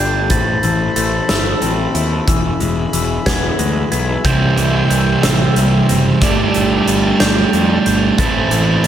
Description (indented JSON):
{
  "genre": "post-rock",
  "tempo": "61 BPM (dotted quarters)",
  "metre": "6/8",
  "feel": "straight",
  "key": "A minor",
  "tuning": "A4 = 441 Hz",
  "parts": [
    { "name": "pedal harmonium", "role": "sustained chords", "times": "0.0-8.9 s", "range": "G4 to C6", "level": "-24 LUFS", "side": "left 2 dB", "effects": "none" },
    { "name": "glockenspiel with rubber mallets", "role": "arpeggios", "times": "0.0-8.9 s", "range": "E6 to A6", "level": "-24 LUFS", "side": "right 2 dB", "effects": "slapback echo" },
    { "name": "semi-hollow electric guitar", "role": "arpeggios", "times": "0.0-8.9 s", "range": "A2 to E4", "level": "-22 LUFS", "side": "left 5 dB", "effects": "slapback echo" },
    { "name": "fuzz picked electric bass", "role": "bass", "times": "0.0-8.9 s", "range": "E1 to F2", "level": "-19 LUFS", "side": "equal", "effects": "overdrive" },
    { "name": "huge arena drum kit", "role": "drums", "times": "0.3-8.9 s", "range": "hi-hat, kick drum, snare drum", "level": "-20 LUFS", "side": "equal", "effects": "none" },
    { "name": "fuzz guitar", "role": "riff", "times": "4.2-8.9 s", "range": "A2 to G4", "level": "-14 LUFS", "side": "right 4 dB", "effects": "distortion" }
  ],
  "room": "moderate concert hall reverb, RT60 1.8 s, small room reverb",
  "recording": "big arena sound",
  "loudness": "-12 LUFS",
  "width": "side -10 dB against mid",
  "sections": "0.0-8.9 A section",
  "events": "none",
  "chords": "0.3 Amadd9; 2.3 E; 4.3 C; 6.2 Gsus2; 8.2 Amadd9",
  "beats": "| 0.30 1.29 | 2.28 3.26 | 4.25 5.24 | 6.22 7.21 | 8.19"
}